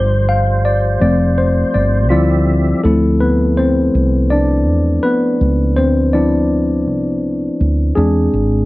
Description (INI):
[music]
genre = R&B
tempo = 82 BPM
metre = 4/4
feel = swing 64% on 16ths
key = D dorian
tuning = A4 = 440 Hz
[part]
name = mellow tine electric piano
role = accompaniment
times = 0.0-8.7 s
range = F3 to F5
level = -14 LUFS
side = left 1 dB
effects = plate reverb
[part]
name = percussive tonewheel organ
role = sustained chords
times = 0.0-2.8 s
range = D3 to E5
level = -24 LUFS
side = right 2 dB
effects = slow rotary speaker, chorus vibrato, plate reverb
[part]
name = woody fretless electric bass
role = bass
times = 0.0-8.6 s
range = F1 to E2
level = -16 LUFS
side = equal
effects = none
[sound]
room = moderate studio reverb, RT60 0.8 s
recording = none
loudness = -12 LUFS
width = side -19 dB against mid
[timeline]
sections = 0.0-2.8 A section; 2.8-8.7 B section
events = tine electric piano solo 0.0-2.8, 2.8-8.7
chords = 0.0 G7sus4; 2.1 Dm11; 2.8 Dm7; 8.0 E7b13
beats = 0.64 1.37 2.10 | 2.83 3.56 4.29 5.03 | 5.76 6.49 7.22 7.95